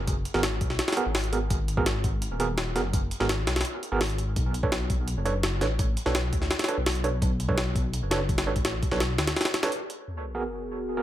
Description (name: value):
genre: drum and bass, jungle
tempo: 168 BPM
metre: 4/4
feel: straight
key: unclear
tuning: A4 = 440 Hz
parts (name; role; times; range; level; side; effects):
- dark detuned saw bass; bass; 0.0-9.3 s; D#1 to D2; -29 LUFS; equal; tube saturation
- jungle sampler-style drum kit; drums; 0.1-10.0 s; hi-hat, kick drum, snare drum; -27 LUFS; equal; none
- overdriven tine electric piano; stabs; 0.3-11.0 s; B3 to C#5; -31 LUFS; right 3 dB; fast tremolo, vintage 12-bit sampler grit, dub echo
- airy breathy pad; sustained chords; 10.2-11.0 s; B3 to A#4; -33 LUFS; left 1 dB; chorus, vintage 12-bit sampler grit
- sub drop; sound effects; 10.1-11.0 s; none; -39 LUFS; equal; none
room: little or no reverb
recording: none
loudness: -24 LUFS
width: side -12 dB against mid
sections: 0.0-10.1 A section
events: break 9.4-10.1; impact 10.1-11.0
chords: 0.0 G#m9; 4.4 Bm9; 10.1 G#m9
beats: | 0.08 0.43 0.79 1.15 | 1.50 1.86 2.22 2.58 | 2.93 3.29 3.65 4.00 | 4.36 4.72 5.08 5.43 | 5.79 6.15 6.50 6.86 | 7.22 7.58 7.93 8.29 | 8.65 9.01 9.36 9.72 | 10.08 10.43 10.79